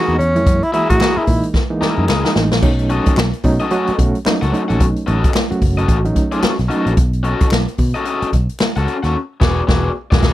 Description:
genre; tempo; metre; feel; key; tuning
funk; 110 BPM; 4/4; swing 60% on 16ths; unclear; A4 = 440 Hz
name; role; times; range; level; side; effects
breathy tenor saxophone; melody; 0.0-1.4 s; C#4 to F#4; -17 LUFS; equal; none
raw garage guitar; accompaniment; 0.0-10.3 s; B3 to F#5; -20 LUFS; left 3 dB; overdrive
overdriven reed electric piano; stabs; 0.0-6.9 s; E3 to F#4; -20 LUFS; right 2 dB; medium tremolo
vintage muted picked electric bass; bass; 0.1-10.3 s; E1 to B2; -18 LUFS; equal; none
swinging big-band drum kit; drums; 0.1-10.3 s; crash cymbal, hi-hat, kick drum, snare drum; -16 LUFS; equal; none
group handclap; percussion; 1.0-8.7 s; none; -28 LUFS; left 3 dB; none
room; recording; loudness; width
little or no reverb; none; -14 LUFS; side -14 dB against mid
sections
0.0-2.6 A section; 2.6-10.3 B section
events
tenor saxophone solo 0.0-2.6; drum fill 1.5-2.6; band accent 9.1-10.3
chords
0.0 F#13; 2.6 B9; 9.1 E9

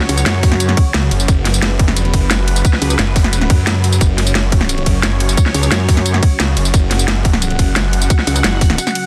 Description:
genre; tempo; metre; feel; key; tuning
dark technical drum and bass; 176 BPM; 4/4; straight; unclear; A4 = 440 Hz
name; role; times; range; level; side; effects
sweeping resonant pad; sustained chords; 0.0-9.1 s; C#3 to F#5; -25 LUFS; equal; chorus, sidechain pumping
drum and bass drum kit; drums; 0.0-9.0 s; hi-hat, ride cymbal, snare drum, tambourine; -20 LUFS; equal; overdrive
metallic wobble bass; bass; 0.1-0.8, 2.8-3.0, 5.5-6.2, 8.3-8.8 s; F#1 to F#2; -17 LUFS; equal; distortion, chorus
electronic kick drum; drums; 0.4-8.7 s; none; -15 LUFS; equal; overdrive
snarling distorted saw bass; bass; 0.9-8.1 s; F#1 to F#2; -18 LUFS; equal; distortion, overdrive, sidechain pumping
room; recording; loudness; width
little or no reverb; dense, heavily limited modern master; -14 LUFS; mono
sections
0.0-9.1 A section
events
break 8.8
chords
0.0 F#5

